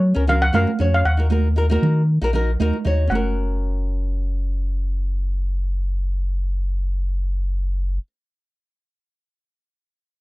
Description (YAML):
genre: calypso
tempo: 117 BPM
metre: 4/4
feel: straight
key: F# major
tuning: A4 = 440 Hz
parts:
  - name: steel pan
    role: melody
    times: 0.0-8.0 s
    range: C#5 to F#5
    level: -22 LUFS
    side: equal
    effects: none
  - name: pure sine sub bass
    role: bass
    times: 0.0-8.0 s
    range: F#1 to F#3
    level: -20 LUFS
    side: equal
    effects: none
  - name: flamenco guitar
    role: accompaniment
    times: 0.1-8.1 s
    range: C#4 to C#5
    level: -26 LUFS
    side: left 2 dB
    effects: none
  - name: congas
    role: percussion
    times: 0.3-3.4 s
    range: none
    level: -26 LUFS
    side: right 6 dB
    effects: none
room: little or no reverb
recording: dry, close 1970s-style studio recording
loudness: -19 LUFS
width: side -20 dB against mid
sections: 0.0-3.1 A section; 3.1-7.2 B section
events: none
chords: 0.0 F#maj7; 1.1 D#m; 3.1 F#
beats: 0.03 0.54 | 1.05 1.56 2.08 2.59 | 3.11 3.62 4.14 4.65 | 5.17 5.68 6.20 6.71